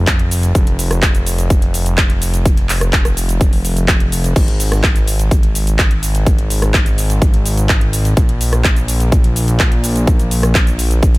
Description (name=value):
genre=EDM, festival progressive house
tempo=126 BPM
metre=4/4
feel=straight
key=unclear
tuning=A4 = 440 Hz
part: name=fat analog bass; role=bass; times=0.0-11.2 s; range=F1 to Bb1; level=-16 LUFS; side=equal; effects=sidechain pumping
part: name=big-room dance drum kit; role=drums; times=0.1-11.2 s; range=crash cymbal, handclaps, hi-hat, rim click, shaker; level=-20 LUFS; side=equal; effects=none
part: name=electronic kick drum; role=drums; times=0.1-11.1 s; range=none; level=-13 LUFS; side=equal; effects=none
room=little or no reverb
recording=none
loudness=-12 LUFS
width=side -21 dB against mid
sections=0.0-11.2 A section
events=none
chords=none